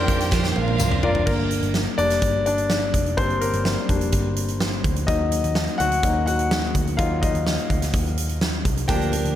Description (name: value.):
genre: piano-driven pop.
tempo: 126 BPM.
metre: 4/4.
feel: straight.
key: unclear.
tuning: A4 = 438 Hz.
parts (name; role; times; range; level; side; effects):
rich studio violin section; second line; 0.0-1.3 s; F4 to G5; -29 LUFS; equal; none.
clear baby grand piano; accompaniment; 0.0-9.4 s; Bb2 to G5; -24 LUFS; left 3 dB; none.
picked steel-string acoustic guitar; riff; 0.0-1.8, 8.9-9.4 s; Bb2 to Bb4; -26 LUFS; right 7 dB; none.
vintage muted picked electric bass; bass; 0.0-9.4 s; F1 to F2; -25 LUFS; equal; none.
huge arena drum kit; drums; 0.1-9.4 s; crash cymbal, hi-hat, kick drum, snare drum, toms; -24 LUFS; right 1 dB; none.
tambourine; percussion; 0.8-0.9 s; none; -31 LUFS; left 7 dB; none.
room: light reverb, small room ambience.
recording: none.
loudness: -19 LUFS.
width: side -11 dB against mid.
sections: 0.0-1.3 A section; 1.3-9.4 B section.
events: drum fill 0.3-1.3; grand piano solo 1.3-9.4.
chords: 0.0 Bb; 5.1 Ebm.